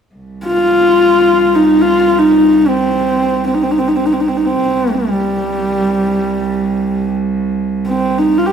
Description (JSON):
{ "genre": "mongolian traditional, Mongolian folk", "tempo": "free time", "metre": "none", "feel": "none", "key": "C yu mode", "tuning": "A4 = 440 Hz", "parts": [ { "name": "dark cello", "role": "drone", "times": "0.1-8.5 s", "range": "C2", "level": "-20 LUFS", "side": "right 4 dB", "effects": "none" }, { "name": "warm horsehead fiddle", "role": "melody", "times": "0.5-8.5 s", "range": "G3 to G4", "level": "-12 LUFS", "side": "left 1 dB", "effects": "none" } ], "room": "moderate recital hall reverb, RT60 1.6 s", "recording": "recorded in a church or concert hall", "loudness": "-11 LUFS", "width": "side -7 dB against mid", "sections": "0.1-8.5 A section", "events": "none", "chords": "none" }